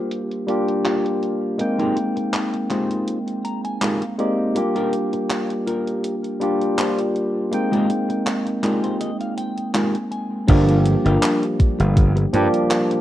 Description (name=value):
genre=vaporwave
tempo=81 BPM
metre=4/4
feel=swing 54% on 16ths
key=unclear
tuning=A4 = 440 Hz
part: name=barky tine electric piano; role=accompaniment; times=0.0-13.0 s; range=F3 to G5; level=-21 LUFS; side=equal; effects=wide subtle chorus, analog delay
part: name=semi-hollow electric guitar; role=riff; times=0.0-12.9 s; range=Ab3 to Bb5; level=-25 LUFS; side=left 1 dB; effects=wide subtle chorus, low-pass filter, analog delay
part: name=gated 80s digital drum machine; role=drums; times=0.1-13.0 s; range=crash cymbal, handclaps, hi-hat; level=-27 LUFS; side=equal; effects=gated reverb, low-pass filter on hats, low-pass filter on snare, low-pass filter on cymbals
part: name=gritty slap bass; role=bass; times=10.5-12.5 s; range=G1 to G2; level=-17 LUFS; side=equal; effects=overdrive
part: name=electronic kick drum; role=drums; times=10.5-12.1 s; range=none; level=-15 LUFS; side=equal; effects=none
room=little or no reverb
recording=rough home demo mix, cassette tape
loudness=-18 LUFS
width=side -13 dB against mid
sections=0.0-10.5 A section; 10.5-13.0 B section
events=clean electric guitar fill 3.1-4.6, 8.3-10.5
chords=0.0 Gm7; 1.6 Fm11/Ab; 4.6 Gm7; 7.5 Fm11/Ab; 10.5 Gm7